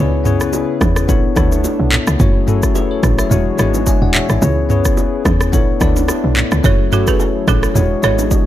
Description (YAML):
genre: afrobeats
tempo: 108 BPM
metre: 4/4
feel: swing 55% on 16ths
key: F# minor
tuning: A4 = 441 Hz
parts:
  - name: bell-like tine electric piano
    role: accompaniment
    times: 0.0-8.5 s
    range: G#3 to G#5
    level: -18 LUFS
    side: left 6 dB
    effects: none
  - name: hollow soft pad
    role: sustained chords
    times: 0.0-8.5 s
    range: C#3 to C#5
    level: -25 LUFS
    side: right 1 dB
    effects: chorus
  - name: woody log drum bass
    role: bass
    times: 0.0-8.3 s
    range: E1 to E2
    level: -17 LUFS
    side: equal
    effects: none
  - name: afro-pop drum kit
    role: drums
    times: 0.3-8.5 s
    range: handclaps, kick drum, rim click, shaker, toms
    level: -16 LUFS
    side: equal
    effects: none
  - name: bongos and congas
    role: percussion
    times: 0.5-8.5 s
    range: none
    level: -25 LUFS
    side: right 6 dB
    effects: none
  - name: balafon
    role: riff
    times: 6.7-8.2 s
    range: F#4 to C#5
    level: -20 LUFS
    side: right 10 dB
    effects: ping-pong delay
room: digital ambience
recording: none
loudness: -12 LUFS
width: side -12 dB against mid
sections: 0.0-8.5 A section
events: none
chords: 0.0 C#m7; 1.1 Bm11; 2.2 F#m7; 3.3 E13; 4.4 C#m7; 5.5 Bm11; 6.6 F#m7; 7.8 E13